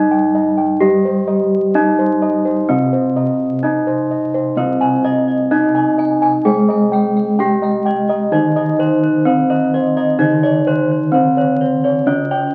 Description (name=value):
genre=Javanese gamelan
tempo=64 BPM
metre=4/4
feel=straight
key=C pelog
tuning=A4 = 439 Hz
part: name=gamelan-type bronze metallophone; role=melody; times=0.0-12.5 s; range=C4 to Ab4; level=-18 LUFS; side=equal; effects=none
part: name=gamelan-type bronze metallophone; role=accompaniment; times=0.0-12.5 s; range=C3 to Ab3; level=-23 LUFS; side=equal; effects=none
part: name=gamelan-type bossed gongs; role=arpeggios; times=0.0-12.5 s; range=C5 to Ab5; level=-22 LUFS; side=equal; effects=none
part: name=gamelan-type bossed gongs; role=bass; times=0.0-12.5 s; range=C2 to G4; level=-25 LUFS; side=equal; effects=none
part: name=gamelan-type bronze metallophone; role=arpeggios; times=4.6-12.5 s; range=C5 to Ab5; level=-27 LUFS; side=equal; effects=none
room=moderate studio reverb, RT60 0.7 s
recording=very old 78 rpm record, vinyl crackle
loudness=-15 LUFS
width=mono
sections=0.0-4.6 A section; 4.6-12.5 A section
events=none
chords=none